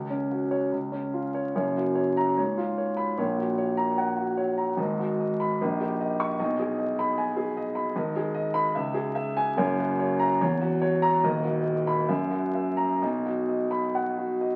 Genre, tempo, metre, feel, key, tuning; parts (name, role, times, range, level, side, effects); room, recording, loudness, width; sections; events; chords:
classical, romantic character piece for solo piano; 63-78 BPM; 2/4; rubato; F# major, B major from 7.9 s; A4 = 442 Hz
dark concert grand piano; solo; 0.0-14.6 s; D#1 to C#6; -27 LUFS; equal
wet stone room reverb, RT60 1.2 s; very old 78 rpm record, vinyl crackle; -27 LUFS; mono
0.0-1.5 A section; 1.5-14.6 B section
0.0 F#5/C#; 0.7 C#; 1.5 F#; 2.4 C#7/G#; 3.2 F#/A#; 4.8 G#m7; 5.6 D#7/A#; 6.4 G#m/B; 7.9 G#m; 8.7 C#m; 9.6 F#; 10.4 F#7/E; 11.2 B/D#; 12.1 F#7; 13.0 B